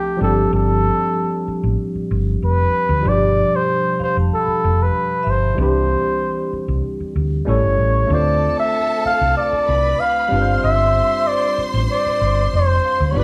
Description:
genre	soul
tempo	95 BPM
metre	4/4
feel	straight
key	unclear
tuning	A4 = 442 Hz
part	breathy flugelhorn	melody	0.0-13.2 s	G4 to F5	-21 LUFS	equal	none
part	tine electric piano	accompaniment	0.0-13.2 s	B2 to C5	-25 LUFS	equal	overdrive
part	vibraphone with medium hard mallets	texture	0.0-6.2, 12.8-13.2 s	E5 to B5	-35 LUFS	equal	none
part	hollow-body short-scale fingered electric bass	bass	0.2-13.2 s	F1 to D2	-22 LUFS	equal	none
part	rich studio violin section	second line	8.1-13.2 s	A4 to C6	-29 LUFS	equal	none
room	moderate large studio reverb, RT60 1.2 s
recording	band playing live in one room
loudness	-18 LUFS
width	mono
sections	0.0-13.2 A section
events	none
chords	0.2 G7sus4; 3.0 G7; 5.6 Cmaj9; 7.5 A7; 8.1 Dm7; 10.3 G7sus4

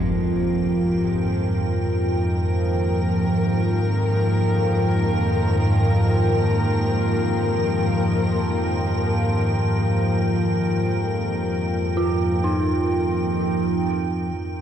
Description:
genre	dark ambient drone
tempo	free time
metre	none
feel	none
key	unclear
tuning	A4 = 440 Hz
part	dark studio cello section	sustained chords	0.0-14.4 s	Ab2 to Bb4	-22 LUFS	left 1 dB	none
part	dark detuned synth bell	arpeggios	0.0-14.6 s	C4 to F4	-28 LUFS	right 3 dB	chorus, phaser, shimmer reverb, diffuse ambient delay
part	analog drone	drone	0.0-14.6 s	F2 to F3	-23 LUFS	equal	chorus, phaser
part	icy glass pad	texture	0.2-14.6 s	G5	-31 LUFS	right 4 dB	chorus, built-in reverb, shimmer reverb
room	wet cathedral reverb, RT60 7.0 s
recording	dark, warm production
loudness	-19 LUFS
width	side -9 dB against mid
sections	0.0-14.4 A section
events	none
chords	0.0 Absus2/F

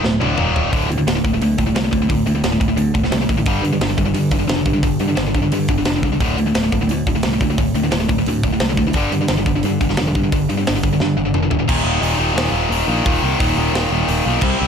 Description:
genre	heavy metal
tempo	175 BPM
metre	4/4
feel	straight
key	unclear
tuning	A4 = 440 Hz
part	tight distorted guitar	riff	0.0-14.7 s	D2 to C4	-18 LUFS	equal	distortion
part	picked electric bass	bass	0.0-14.7 s	D1 to G2	-22 LUFS	equal	none
part	tight metal drum kit	drums	0.0-14.5 s	crash cymbal, hi-hat, kick drum, snare drum, toms	-22 LUFS	equal	none
room	small room ambience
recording	dark, warm production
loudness	-15 LUFS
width	side -7 dB against mid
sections	0.7-11.7 A section; 11.7-14.7 B section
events	drum fill 0.0-0.7, 11.0-11.7; half time 11.7-14.7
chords	0.4 Eb5; 0.7 D5; 3.5 G5; 6.2 D5; 8.9 G5; 11.7 Eb5

